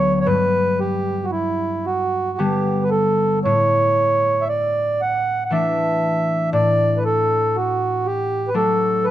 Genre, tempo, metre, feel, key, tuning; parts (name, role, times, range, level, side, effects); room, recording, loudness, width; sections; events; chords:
celtic folk, Celtic slow air; 58 BPM; 3/4; rubato; A mixolydian; A4 = 440 Hz
mellow accordion; melody; 0.0-9.1 s; E4 to F#5; -18 LUFS; right 2 dB
concert harp; accompaniment; 0.0-9.1 s; D2 to D4; -22 LUFS; left 2 dB
light reverb; close, detailed microphones; -17 LUFS; side -12 dB against mid
0.0-9.1 A section
0.3 G; 3.4 Asus4; 6.5 D/A